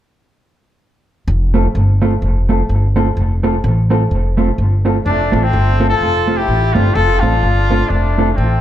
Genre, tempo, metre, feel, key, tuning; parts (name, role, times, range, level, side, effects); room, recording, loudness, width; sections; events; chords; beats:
ska; 127 BPM; 4/4; swing 58% on 8ths; F major; A4 = 439 Hz
upright bass; bass; 1.3-8.6 s; F1 to A1; -14 LUFS; equal
mellow electric guitar; accompaniment; 1.5-8.3 s; A3 to A4; -18 LUFS; right 2 dB; spring reverb, dub echo
clear horn section; melody; 5.0-8.6 s; A3 to A4; -16 LUFS; left 2 dB; dub echo, plate reverb
moderate club reverb, RT60 0.7 s; -12 LUFS; side -12 dB against mid
1.3-5.1 A section; 5.1-8.6 B section
1.3 F
| 1.26 1.74 2.21 2.68 | 3.16 3.63 4.11 4.58 | 5.05 5.53 6.00 6.47 | 6.95 7.42 7.90 8.37